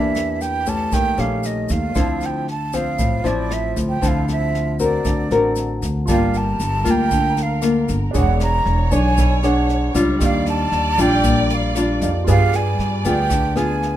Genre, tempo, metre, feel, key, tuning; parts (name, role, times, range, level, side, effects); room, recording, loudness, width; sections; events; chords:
bossa nova; 116 BPM; 4/4; straight; D minor; A4 = 439 Hz
breathy jazz flute; melody; 0.0-14.0 s; D5 to Bb5; -23 LUFS; right 4 dB
nylon-string guitar; accompaniment; 0.0-14.0 s; A2 to C#5; -21 LUFS; left 3 dB
upright bass; bass; 0.0-14.0 s; E1 to G2; -21 LUFS; equal
tube shaker; percussion; 0.1-13.8 s; -35 LUFS; left 7 dB
jazz brush drum kit; drums; 0.2-13.9 s; kick drum, rim click, snare drum; -25 LUFS; equal
warm studio violin section; second line; 6.1-14.0 s; Bb4 to D5; -28 LUFS; left 1 dB
clear concert grand piano; accompaniment; 6.1-14.0 s; D4 to A5; -30 LUFS; right 6 dB
light reverb; minimal, uncompressed stereo recording; -16 LUFS; side -12 dB against mid
0.0-6.1 A section; 6.1-14.0 B section
0.0 Em7b5; 0.9 Eb7#11; 2.0 Dm9; 5.0 D7b13; 6.1 Gm9; 8.1 E13; 10.2 Ebmaj9; 12.3 G7b9